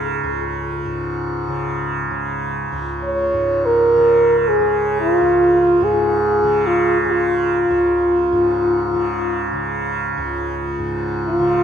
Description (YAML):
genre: world meditative, free-time meditation music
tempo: free time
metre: none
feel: none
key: Db major pentatonic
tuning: A4 = 441 Hz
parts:
  - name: tanpura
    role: drone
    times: 0.0-11.6 s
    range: Db2 to Db3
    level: -21 LUFS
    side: right 1 dB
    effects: stereo widening
  - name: clear French horn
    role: melody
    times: 3.0-11.6 s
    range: F4 to Db5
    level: -16 LUFS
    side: equal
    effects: tape echo
room: wet cathedral reverb, RT60 4.6 s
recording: none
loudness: -16 LUFS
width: side -8 dB against mid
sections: 0.0-11.6 A section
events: none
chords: none